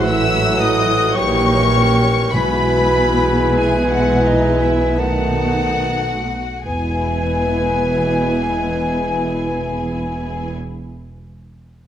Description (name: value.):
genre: classical, slow romantic movement for symphony orchestra.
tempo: 33-58 BPM.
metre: 3/4.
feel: rubato.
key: E major.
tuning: A4 = 440 Hz.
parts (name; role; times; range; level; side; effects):
warm symphonic violin section; melody; 0.0-10.5 s; D#5 to E6; -24 LUFS; left 4 dB; none.
mellow cor anglais; second line; 0.0-10.5 s; F#5 to A5; -27 LUFS; equal; none.
rich symphonic violin section; second line; 0.0-10.5 s; D#4 to E5; -28 LUFS; equal; none.
warm clarinet; second line; 0.0-10.5 s; F#4 to B4; -24 LUFS; left 1 dB; none.
mellow bassoon; accompaniment; 0.0-10.5 s; D#3 to E3; -25 LUFS; right 2 dB; none.
warm symphonic viola section; accompaniment; 0.0-10.5 s; F#3 to E4; -26 LUFS; right 2 dB; none.
warm French horn section; sustained chords; 0.0-10.5 s; B3 to A4; -25 LUFS; left 2 dB; none.
warm trombone section; sustained chords; 0.0-10.5 s; B2 to A3; -27 LUFS; right 2 dB; none.
rich symphonic double bass section; bass; 0.0-10.5 s; E1 to B1; -23 LUFS; right 2 dB; none.
warm symphonic cello section; bass; 0.0-10.5 s; E2 to B2; -24 LUFS; right 1 dB; none.
silver concert flute; second line; 0.1-10.5 s; D#5 to E6; -25 LUFS; left 5 dB; none.
timpani; percussion; 2.3-10.5 s; E2 to B2; -27 LUFS; equal; none.
room: moderate recital hall reverb, RT60 1.7 s.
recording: none.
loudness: -15 LUFS.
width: side -10 dB against mid.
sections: 0.0-6.7 A section; 6.7-11.5 B section.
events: slowing down 0.0-6.7.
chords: 0.0 F#m7/A; 1.2 A#dim7; 2.3 E/B; 5.0 B7; 6.7 E.